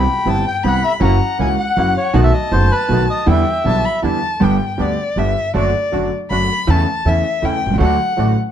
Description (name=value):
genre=tango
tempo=159 BPM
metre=3/4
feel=rubato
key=E minor, G major from 4.4 s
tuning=A4 = 439 Hz
part: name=bandoneon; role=melody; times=0.0-4.0 s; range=B4 to B5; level=-20 LUFS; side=left 1 dB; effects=none
part: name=warm violin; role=second line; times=0.0-8.3 s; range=D5 to B5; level=-20 LUFS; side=left 3 dB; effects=none
part: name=bright concert grand piano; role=accompaniment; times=0.0-8.3 s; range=F#1 to G4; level=-19 LUFS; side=equal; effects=none
part: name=bandoneon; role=stabs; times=0.0-8.3 s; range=F#3 to G4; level=-28 LUFS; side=right 5 dB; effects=slapback echo
part: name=upright bass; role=bass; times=0.0-8.3 s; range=F#1 to E2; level=-18 LUFS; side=right 1 dB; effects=none
room=light reverb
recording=dark, warm production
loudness=-14 LUFS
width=side -9 dB against mid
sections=0.0-4.4 A section; 4.4-8.5 B section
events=violin solo 4.4-8.5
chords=0.0 Cmaj7; 1.0 F#7; 2.1 B7; 3.3 Em7; 4.4 G; 5.5 D/F#; 6.7 A/E; 7.8 D